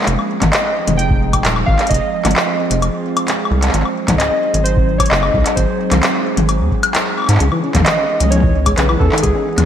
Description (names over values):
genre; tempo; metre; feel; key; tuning
IDM; 131 BPM; 4/4; straight; unclear; A4 = 440 Hz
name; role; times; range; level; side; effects
warbly tape-like pad; sustained chords; 0.0-9.7 s; E3 to G#4; -22 LUFS; right 2 dB; chorus, built-in reverb, sidechain pumping
electro analog drum machine; drums; 0.0-9.7 s; handclaps, hi-hat, toms, woodblock; -17 LUFS; left 2 dB; gated reverb
rubbery square bass; bass; 0.1-9.7 s; Eb1 to G#2; -16 LUFS; equal; none
electronic kick drum; drums; 0.4-9.3 s; none; -18 LUFS; equal; none
warbly lo-fi synth keys; melody; 0.5-9.7 s; G#4 to G5; -20 LUFS; right 1 dB; chorus, ping-pong delay
overdriven tine electric piano; arpeggios; 7.4-9.6 s; C#3 to C#4; -21 LUFS; left 2 dB; ensemble chorus, digital delay
pulsing gated texture; texture; 7.7-9.7 s; D#4 to D#5; -32 LUFS; left 1 dB; none
room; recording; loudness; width
moderate lush hall reverb, RT60 2.0 s, digital ambience; bright 1980s-style digital production; -13 LUFS; side -9 dB against mid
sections
0.0-9.7 A section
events
kick drops out 6.9-7.4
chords
0.1 Fm7; 3.7 G#7; 7.4 C#m7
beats
| 0.07 0.53 0.99 1.45 | 1.91 2.37 2.82 3.28 | 3.74 4.20 4.66 5.11 | 5.57 6.03 6.49 6.95 | 7.40 7.86 8.32 8.78 | 9.23